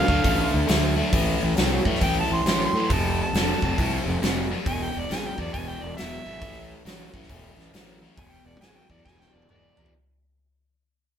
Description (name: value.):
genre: blues rock power trio and southern rock.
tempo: 136 BPM.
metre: 4/4.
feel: swing 64% on 8ths.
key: A minor.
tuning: A4 = 442 Hz.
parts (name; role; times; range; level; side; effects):
mellow harmonica; melody; 0.0-9.9 s; D5 to C6; -29 LUFS; right 2 dB; overdrive.
biting overdriven guitar; riff; 0.0-9.9 s; E2 to A3; -28 LUFS; left 1 dB; none.
fuzz fingered electric bass; bass; 0.1-9.9 s; E1 to A2; -27 LUFS; equal; overdrive.
big rock drum kit; drums; 0.1-9.9 s; hi-hat, kick drum, snare drum, toms; -26 LUFS; equal; none.
room: light reverb.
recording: band playing live in one room.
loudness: -21 LUFS.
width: side -9 dB against mid.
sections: 0.0-9.9 A section.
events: fade-out 0.0-9.9; drum fill 9.1-9.9.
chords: 0.0 Dm; 1.1 Am; 2.9 F; 4.7 E; 6.4 A5; 8.2 E7.